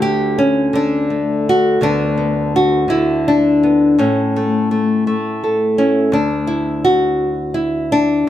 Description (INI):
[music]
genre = folk, solo fingerstyle acoustic guitar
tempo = 56 BPM (dotted quarters)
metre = 6/8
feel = straight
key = D major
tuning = A4 = 440 Hz
[part]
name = nylon-string guitar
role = solo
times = 0.0-8.3 s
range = D2 to A4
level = -13 LUFS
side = left 1 dB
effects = none
[sound]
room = light reverb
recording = none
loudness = -13 LUFS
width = side -12 dB against mid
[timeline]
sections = 0.0-6.1 A section; 6.1-8.3 B section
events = none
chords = 0.0 D5; 1.8 D69; 4.0 A; 6.1 D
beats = 0.74 | 1.82 2.89 | 3.97 5.04 | 6.12 7.20 | 8.28